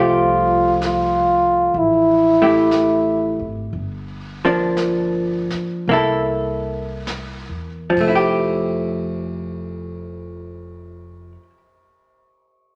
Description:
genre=jazz ballad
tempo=43-67 BPM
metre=4/4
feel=swing 69% on 8ths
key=F major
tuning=A4 = 440 Hz
part: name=breathy flugelhorn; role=melody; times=0.0-3.4 s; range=E4 to F4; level=-17 LUFS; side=equal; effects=none
part: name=vintage hollow-body jazz guitar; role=accompaniment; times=0.0-11.6 s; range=F3 to A4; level=-22 LUFS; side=equal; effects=none
part: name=upright bass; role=bass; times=0.0-11.3 s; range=F1 to E2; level=-33 LUFS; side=equal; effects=none
part: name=vintage brush drum kit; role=drums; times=0.8-8.2 s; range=brushed snare drum, hi-hat, kick drum, ride cymbal, snare drum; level=-37 LUFS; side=equal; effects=none
room=wet large studio reverb, RT60 1.1 s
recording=none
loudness=-19 LUFS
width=mono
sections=0.0-3.7 A section; 3.7-8.4 B section; 8.4-12.8 C section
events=slowing down 0.0-8.4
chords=0.0 Fmaj9; 3.7 Gm7; 5.9 C6; 7.7 Fmaj9

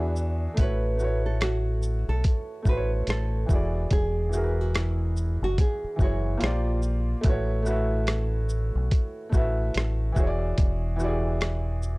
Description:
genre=lo-fi hip hop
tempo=72 BPM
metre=4/4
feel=swing 60% on 16ths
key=A major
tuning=A4 = 440 Hz
part: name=felt-muted upright piano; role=accompaniment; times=0.0-12.0 s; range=E3 to E5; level=-31 LUFS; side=equal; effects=cassette tape
part: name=deep dub fingered electric bass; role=bass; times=0.0-12.0 s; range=E1 to E2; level=-26 LUFS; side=equal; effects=none
part: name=boom bap sampler-style drum kit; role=drums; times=0.2-12.0 s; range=hi-hat, kick drum, rim click, shaker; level=-24 LUFS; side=equal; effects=none
part: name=nylon-string guitar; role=melody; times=0.6-6.8 s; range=E4 to B4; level=-32 LUFS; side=right 2 dB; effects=tape echo
room=little or no reverb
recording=dry, gritty hardware recording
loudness=-23 LUFS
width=side -24 dB against mid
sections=0.6-12.0 A section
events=none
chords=0.0 E7; 0.6 A69; 3.5 E9; 6.4 Bb69; 7.2 A69; 10.2 E9

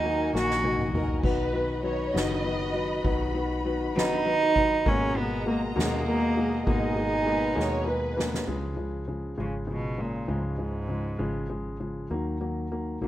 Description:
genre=six-eight pop ballad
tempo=66 BPM (dotted quarters)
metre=6/8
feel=straight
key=unclear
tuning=A4 = 440 Hz
part: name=rich cello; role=melody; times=0.0-1.0, 4.0-13.1 s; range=Gb2 to Gb4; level=-27 LUFS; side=right 2 dB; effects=none
part: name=felt-muted upright piano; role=accompaniment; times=0.0-13.1 s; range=Cb3 to B3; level=-30 LUFS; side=left 2 dB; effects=none
part: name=warm symphonic string section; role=sustained chords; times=0.0-8.5 s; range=Gb4 to B5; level=-36 LUFS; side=equal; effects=none
part: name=vintage muted fingered electric bass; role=bass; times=0.0-13.1 s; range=F#1 to Eb2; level=-34 LUFS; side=equal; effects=none
part: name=soft-mallet drum kit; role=drums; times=0.0-8.5 s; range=kick drum, ride cymbal, snare drum, splash cymbal, toms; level=-32 LUFS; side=equal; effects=none
part: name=dark studio violin section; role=second line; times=0.9-3.3, 7.3-8.5 s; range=Bb4 to D#5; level=-33 LUFS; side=right 1 dB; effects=none
room=small room ambience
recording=rough home demo mix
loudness=-25 LUFS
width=side -13 dB against mid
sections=0.0-8.5 A section; 8.5-13.1 B section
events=drum fill 0.3-1.2, 7.6-8.5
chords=0.0 Ebm; 1.2 B; 4.9 Abmadd9; 8.5 Db; 12.1 Ebm

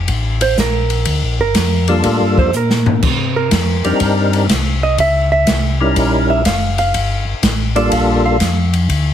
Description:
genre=soul jazz organ trio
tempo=123 BPM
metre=4/4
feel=swing 68% on 8ths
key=G minor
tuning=A4 = 440 Hz
part: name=mellow tonewheel organ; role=bass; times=0.0-9.1 s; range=F#1 to C3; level=-17 LUFS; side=left 1 dB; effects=chorus vibrato, slow rotary speaker
part: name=open jazz drum kit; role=drums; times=0.1-9.0 s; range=crash cymbal, hi-hat, kick drum, ride cymbal, snare drum, toms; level=-18 LUFS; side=left 1 dB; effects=none
part: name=hollow-body jazz guitar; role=accompaniment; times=0.4-8.7 s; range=Bb4 to F5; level=-18 LUFS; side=right 4 dB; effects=none
part: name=percussive tonewheel organ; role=melody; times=1.9-8.4 s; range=G3 to Bb4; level=-15 LUFS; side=left 1 dB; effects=slow rotary speaker, overdrive, chorus vibrato
room=light reverb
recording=heavily compressed radio sound, multiband compression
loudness=-12 LUFS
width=side -10 dB against mid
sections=0.0-9.1 A section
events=hollow-body jazz guitar solo 0.0-9.1; drum fill 2.5-3.0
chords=0.0 Gm7; 3.0 Cm7; 5.0 C#dim7; 6.9 Gm7

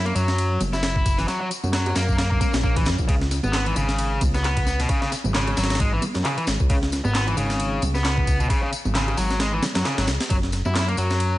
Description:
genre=breakbeat, breaks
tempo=133 BPM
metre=4/4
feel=swing 57% on 16ths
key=C# minor pentatonic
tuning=A4 = 440 Hz
part: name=overdriven electric guitar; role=riff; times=0.0-11.4 s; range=B2 to E4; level=-26 LUFS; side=left 1 dB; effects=ping-pong delay
part: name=fat analog bass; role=bass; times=0.0-11.4 s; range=F#1 to F#2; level=-24 LUFS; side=equal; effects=none
part: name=breakbeat sampler-style drum kit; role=drums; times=0.1-11.3 s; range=hi-hat, kick drum, ride cymbal, snare drum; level=-24 LUFS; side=equal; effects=studio reverb
part: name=electronic tambourine and handclaps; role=drums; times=0.2-11.3 s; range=none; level=-32 LUFS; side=left 2 dB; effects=studio reverb
part: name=congas and bongos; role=percussion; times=0.6-10.7 s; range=none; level=-32 LUFS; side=right 2 dB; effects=none
part: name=swell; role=sound effects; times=2.3-3.1 s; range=none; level=-34 LUFS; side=left 1 dB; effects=none
room=digital ambience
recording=vinyl crackle, nothing above 10.5 kHz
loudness=-20 LUFS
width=side -16 dB against mid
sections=0.0-11.4 A section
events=swell 2.3-3.1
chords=0.0 F#7; 3.1 C#7(no3); 10.3 F#7(no3)

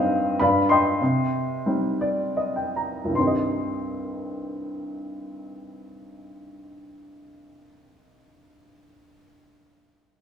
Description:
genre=classical, lyrical solo piano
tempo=71-102 BPM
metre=3/4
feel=rubato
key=C minor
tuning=A4 = 440 Hz
part: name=clear upright piano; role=solo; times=0.0-10.2 s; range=C2 to C6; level=-22 LUFS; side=equal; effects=none
room=moderate scoring stage reverb, RT60 1.9 s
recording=recorded in a church or concert hall, small room ambience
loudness=-22 LUFS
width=side -8 dB against mid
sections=0.0-3.2 A section; 3.2-8.1 B section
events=slowing down 0.0-3.2; upright piano fill 1.7-3.2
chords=0.4 G7; 1.0 Cm

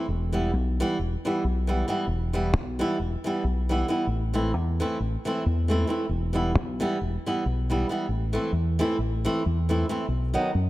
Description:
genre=balkan folk, Balkan wedding band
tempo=270 BPM (eighths)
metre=9/8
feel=straight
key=E minor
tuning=A4 = 440 Hz
part: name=flamenco guitar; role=accompaniment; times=0.0-10.5 s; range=D#3 to E4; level=-27 LUFS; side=right 1 dB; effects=none
part: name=fingered electric bass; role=bass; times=0.1-10.7 s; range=E1 to F#2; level=-25 LUFS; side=equal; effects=none
room=light reverb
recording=none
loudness=-24 LUFS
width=side -17 dB against mid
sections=0.0-8.1 A section; 8.1-10.7 B section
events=none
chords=0.1 Em; 4.1 Am; 6.1 Em; 8.1 Am; 10.1 B

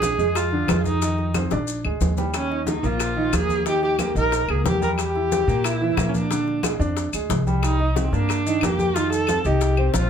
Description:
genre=Afro-Cuban jazz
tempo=182 BPM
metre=4/4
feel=straight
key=Bb mixolydian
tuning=A4 = 442 Hz
part: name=warm viola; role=melody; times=0.0-10.1 s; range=C4 to Bb4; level=-24 LUFS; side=right 1 dB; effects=plate reverb
part: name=clear concert grand piano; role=accompaniment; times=0.0-10.1 s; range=D3 to E5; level=-26 LUFS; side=right 2 dB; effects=none
part: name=upright bass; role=bass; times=0.0-10.1 s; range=Bb1 to Bb2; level=-24 LUFS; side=equal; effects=none
part: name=bongos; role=percussion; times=0.0-10.1 s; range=none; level=-31 LUFS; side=left 6 dB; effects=none
part: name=congas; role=percussion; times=0.0-10.1 s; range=none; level=-29 LUFS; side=equal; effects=none
part: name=maracas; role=percussion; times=0.0-10.1 s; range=none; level=-35 LUFS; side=left 6 dB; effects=none
part: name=claves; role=percussion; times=0.4-9.9 s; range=none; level=-32 LUFS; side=left 4 dB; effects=none
room=moderate small room reverb, RT60 0.5 s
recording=heard from further back in the room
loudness=-19 LUFS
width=side -8 dB against mid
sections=0.0-10.1 A section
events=drum fill 1.5-2.3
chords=0.0 Bb7; 1.0 F5; 1.7 Bb7; 2.3 Eb; 5.0 Edim; 6.3 Bb7; 7.6 Cm7; 9.0 F7

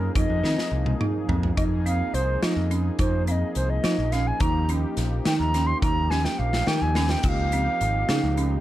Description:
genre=progressive instrumental, band music in an uneven meter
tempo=212 BPM (eighths)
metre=5/8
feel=straight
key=F minor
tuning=A4 = 442 Hz
part: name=mellow wooden flute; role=melody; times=0.0-8.6 s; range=Bb4 to C6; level=-28 LUFS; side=right 1 dB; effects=none
part: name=brassy analog pad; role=accompaniment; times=0.0-8.6 s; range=F3 to Ab4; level=-32 LUFS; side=left 2 dB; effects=chorus
part: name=folk marimba with hard mallets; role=arpeggios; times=0.0-8.6 s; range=C4 to F4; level=-30 LUFS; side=right 3 dB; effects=none
part: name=modern bright picked electric bass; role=bass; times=0.0-8.6 s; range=Ab1 to F3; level=-25 LUFS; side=equal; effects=none
part: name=big rock drum kit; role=drums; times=0.2-8.5 s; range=hi-hat, kick drum, snare drum, splash cymbal, toms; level=-28 LUFS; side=equal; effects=none
room=little or no reverb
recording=none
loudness=-21 LUFS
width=side -14 dB against mid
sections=0.0-1.6 A section; 1.6-8.6 B section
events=drum fill 0.4-1.6, 6.1-7.2; flute solo 1.6-8.6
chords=0.2 Fm7; 4.4 Eb7; 7.2 Dbmaj7

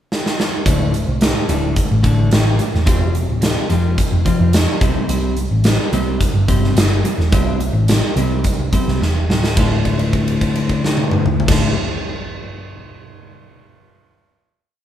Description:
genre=quiet-loud alternative rock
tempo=108 BPM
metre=4/4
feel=straight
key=D minor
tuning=A4 = 435 Hz
part: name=huge arena drum kit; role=drums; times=0.1-11.6 s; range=crash cymbal, hi-hat, kick drum, snare drum, toms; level=-18 LUFS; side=equal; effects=none
part: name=twelve-string electric guitar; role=arpeggios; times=0.7-11.7 s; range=D2 to F4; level=-20 LUFS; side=left 1 dB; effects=spring reverb
part: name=hollow-body short-scale picked electric bass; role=bass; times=0.7-11.7 s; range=D1 to F2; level=-18 LUFS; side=equal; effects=none
room=light reverb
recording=band playing live in one room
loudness=-14 LUFS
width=side -10 dB against mid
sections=0.0-0.7 pickup bar; 0.7-9.6 verse; 9.6-11.8 final chord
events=drum fill 0.1-0.7, 9.0-9.6; held note 9.6-11.5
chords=0.0 N.C.; 0.7 D5; 2.9 F5; 4.8 C5; 9.6 Dm

